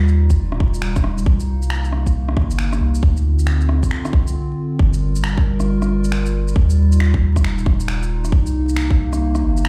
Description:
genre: future garage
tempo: 136 BPM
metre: 4/4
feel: swing 64% on 16ths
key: G minor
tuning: A4 = 440 Hz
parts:
  - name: warbly tape-like pad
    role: sustained chords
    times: 0.0-9.7 s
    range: C3 to Bb4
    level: -26 LUFS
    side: equal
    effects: chorus, built-in reverb, sidechain pumping
  - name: soft dub sub bass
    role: bass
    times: 0.0-9.7 s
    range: Eb1 to Eb2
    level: -20 LUFS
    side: equal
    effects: sidechain pumping
  - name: electronic shaker, rim click and finger snaps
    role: drums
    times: 0.1-9.7 s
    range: none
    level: -31 LUFS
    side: equal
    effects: none
  - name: electronic kick drum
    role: drums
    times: 0.3-9.0 s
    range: none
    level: -18 LUFS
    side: equal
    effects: none
room: little or no reverb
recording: played on a big sound system in a bare room, stone room reverb, vinyl crackle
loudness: -18 LUFS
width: mono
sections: 0.0-4.8 A section; 4.8-9.7 B section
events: break 4.4-4.8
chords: 0.0 Ebadd9; 1.3 Cm7; 3.0 Dm7; 4.8 Gm7; 6.6 Ebadd9; 8.3 Cm7

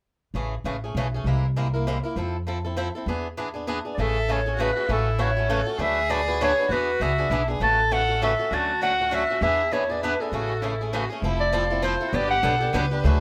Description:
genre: acoustic string swing (jazz manouche)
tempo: 198 BPM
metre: 3/4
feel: swing 58% on 8ths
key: A major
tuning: A4 = 440 Hz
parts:
  - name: picked swing-style acoustic guitar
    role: accompaniment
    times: 0.3-13.2 s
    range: C3 to B4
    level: -31 LUFS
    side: equal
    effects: none
  - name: upright bass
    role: bass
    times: 0.3-13.2 s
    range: F1 to F2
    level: -29 LUFS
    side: equal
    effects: none
  - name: breathy clarinet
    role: melody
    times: 3.9-12.9 s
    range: A4 to A5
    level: -26 LUFS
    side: equal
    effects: none
  - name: warm violin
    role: second line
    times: 4.0-13.2 s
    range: E4 to B4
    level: -32 LUFS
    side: equal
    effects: none
room: light reverb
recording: none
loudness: -24 LUFS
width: mono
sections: 0.3-4.0 A section; 4.0-11.2 B section; 11.2-13.2 C section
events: none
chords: 0.3 Amaj9; 1.2 Caug7; 2.2 Fmaj7; 3.1 E7; 4.0 Amaj7; 4.9 F#m7/A; 5.8 D6; 6.7 E7; 7.6 A6; 8.5 Dmaj9; 9.4 E7; 10.3 Amaj7; 11.2 Fmaj7; 12.1 Gmaj7

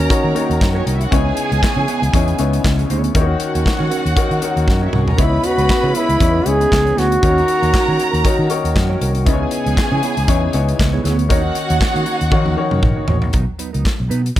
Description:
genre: disco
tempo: 118 BPM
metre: 4/4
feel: swing 56% on 16ths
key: unclear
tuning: A4 = 440 Hz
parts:
  - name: clear trombone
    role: melody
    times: 0.0-0.9, 5.2-9.0 s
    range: C#4 to G#4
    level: -18 LUFS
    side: equal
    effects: slapback echo
  - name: warm studio violin section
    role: second line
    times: 0.0-13.1 s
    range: C#4 to B5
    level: -24 LUFS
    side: right 2 dB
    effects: none
  - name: clear grand piano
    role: accompaniment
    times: 0.0-13.4 s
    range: C#3 to C#5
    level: -22 LUFS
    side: left 6 dB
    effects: none
  - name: mellow electric guitar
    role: accompaniment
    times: 0.0-14.4 s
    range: F#3 to C#5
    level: -27 LUFS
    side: right 8 dB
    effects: phaser
  - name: mellow French horn section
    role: sustained chords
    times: 0.0-13.3 s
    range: C#3 to F#4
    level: -26 LUFS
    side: right 2 dB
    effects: none
  - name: fingered electric bass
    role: bass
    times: 0.0-14.4 s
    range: A1 to D#3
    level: -18 LUFS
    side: equal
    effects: none
  - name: modern studio drum kit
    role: drums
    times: 0.0-14.4 s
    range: handclaps, hi-hat, kick drum, snare drum, toms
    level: -19 LUFS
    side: equal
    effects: none
room: light reverb, studio reverb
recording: none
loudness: -14 LUFS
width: side -13 dB against mid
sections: 0.0-13.3 A section; 13.3-14.4 B section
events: drum fill 4.7-5.2, 12.3-13.3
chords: 0.0 D#m7; 1.1 C#m7; 3.2 D#m7; 5.2 C#m7; 7.2 D#m7; 9.3 C#m7; 11.3 D#m7; 13.3 Bmaj7

